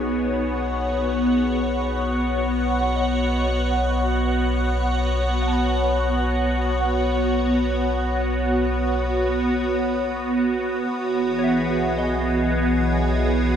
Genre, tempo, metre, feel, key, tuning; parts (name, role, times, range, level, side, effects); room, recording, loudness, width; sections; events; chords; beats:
ambient; free time; B mixolydian; A4 = 440 Hz
evolving wavetable pad; sustained chords; 0.0-13.6 s; E3 to F#5; -21 LUFS; equal; ensemble chorus, built-in reverb, phaser, shimmer reverb
soft synth bell; arpeggios; 0.0-13.6 s; C#5 to B5; -35 LUFS; equal
deep rumbling drone; bass; 0.0-13.6 s; B1; -26 LUFS; equal; built-in reverb
wet cathedral reverb, RT60 5.1 s; dark, warm production; -20 LUFS; side -8 dB against mid
0.0-13.6 A section
0.0 B7; 10.6 Eadd9/B
free time